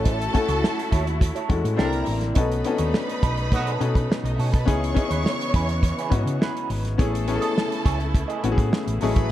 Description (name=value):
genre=lush 1970s-style soul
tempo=104 BPM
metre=4/4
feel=straight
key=C# minor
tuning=A4 = 440 Hz
part: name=warm studio violin section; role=second line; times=0.0-9.3 s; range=D#4 to C#6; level=-32 LUFS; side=right 1 dB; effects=none
part: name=clear grand piano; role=accompaniment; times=0.0-9.3 s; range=F#3 to Bb4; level=-26 LUFS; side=left 5 dB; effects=none
part: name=warm studio string section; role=sustained chords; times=0.0-9.3 s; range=B2 to F#4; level=-33 LUFS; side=right 2 dB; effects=none
part: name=semi-hollow electric guitar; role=riff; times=0.0-9.3 s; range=D4 to D#5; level=-33 LUFS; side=right 8 dB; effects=wah
part: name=hollow-body short-scale fingered electric bass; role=bass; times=0.0-9.3 s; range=G#1 to C#3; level=-25 LUFS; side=equal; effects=none
part: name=damped 70s drum kit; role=drums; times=0.1-9.3 s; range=hi-hat, kick drum, snare drum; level=-23 LUFS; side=equal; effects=none
part: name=mellow horn section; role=stabs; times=3.5-3.7 s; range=F#3 to F#4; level=-31 LUFS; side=right 3 dB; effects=slapback echo
room=light reverb, studio reverb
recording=dark, warm production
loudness=-20 LUFS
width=side -13 dB against mid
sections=0.0-9.3 A section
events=band accent 2.4-4.7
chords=0.0 F#m7/A; 1.8 C9; 2.4 B7; 4.7 C#m7; 7.0 Amaj7